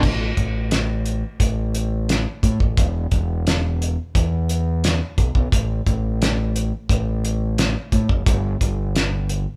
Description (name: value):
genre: classic rock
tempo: 88 BPM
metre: 4/4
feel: straight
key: unclear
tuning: A4 = 440 Hz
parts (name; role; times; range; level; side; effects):
- growling fingered electric bass; bass; 0.0-9.5 s; E1 to A2; -24 LUFS; equal; overdrive
- cloth-damped thuddy drum kit; drums; 0.0-9.5 s; crash cymbal, hi-hat, kick drum, snare drum; -22 LUFS; equal; none
room: light reverb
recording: band playing live in one room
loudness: -21 LUFS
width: mono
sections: 0.0-9.6 A section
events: none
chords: none